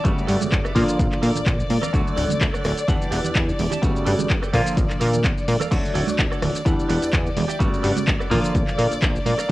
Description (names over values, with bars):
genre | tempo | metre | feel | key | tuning
filtered disco house | 127 BPM | 4/4 | swing 54% on 16ths | unclear | A4 = 440 Hz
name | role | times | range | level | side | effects
clav | accompaniment | 0.0-9.5 s | C#3 to F#5 | -26 LUFS | equal | phaser, sidechain pumping, cassette tape
clear studio violin section | sustained chords | 0.0-9.5 s | D5 | -29 LUFS | left 2 dB | sidechain pumping, cassette tape
direct-recorded clean electric guitar | riff | 0.0-9.5 s | G4 to A5 | -32 LUFS | right 8 dB | wide subtle chorus, sidechain pumping, cassette tape
plucky analog bass | bass | 0.0-9.5 s | D1 to Bb2 | -23 LUFS | equal | sidechain pumping
electronic kick drum | drums | 0.0-9.5 s | none | -22 LUFS | equal | cassette tape
punchy analog drum machine | drums | 0.0-9.5 s | crash cymbal, handclaps, hi-hat, rim click, shaker | -28 LUFS | equal | sidechain pumping on hats, cassette tape, sidechain pumping on perc, sidechain pumping on cymbals
tambourine and congas | percussion | 0.0-9.5 s | none | -31 LUFS | right 9 dB | sidechain pumping on perc
room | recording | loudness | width
digital ambience | home recording on cassette | -18 LUFS | side -17 dB against mid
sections
0.0-5.7 A section; 5.7-9.5 A section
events
drop 0.0-5.7, 5.7-9.5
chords
0.0 Gmaj9#11; 0.8 Bbmaj7; 1.9 Dmaj7; 2.9 Em9; 3.8 Gmaj9#11; 4.5 Bbmaj7; 5.7 Dmaj7; 6.7 Em9; 7.6 Gmaj9#11; 8.3 Bbmaj7